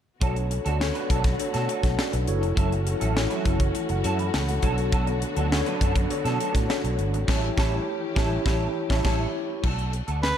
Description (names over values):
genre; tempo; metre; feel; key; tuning
polished 1980s jazz-funk pop; 102 BPM; 4/4; straight; B minor; A4 = 440 Hz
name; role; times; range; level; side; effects
mellow tine electric piano; accompaniment; 0.2-9.7 s; D4 to B5; -29 LUFS; left 2 dB; medium stereo tremolo, lush chorus
warm studio string section; sustained chords; 0.2-9.6 s; D3 to G4; -35 LUFS; equal; none
electric guitar at the edge of break-up; riff; 0.2-10.3 s; F#3 to B4; -32 LUFS; right 4 dB; ensemble chorus
fretless electric bass; bass; 0.2-10.3 s; E#1 to B2; -27 LUFS; equal; none
crisp fusion drum kit; drums; 0.2-10.4 s; crash cymbal, hi-hat, kick drum, snare drum; -27 LUFS; equal; none
warm soprano saxophone; melody; 10.2-10.4 s; B4; -23 LUFS; right 2 dB; none
room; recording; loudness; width
light reverb, small room ambience; dark, warm production; -22 LUFS; side -9 dB against mid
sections
0.2-9.6 A section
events
band accent 7.3-9.6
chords
0.2 Bm7; 2.3 F#m7; 4.6 Bm7; 7.3 A7; 9.6 Bm7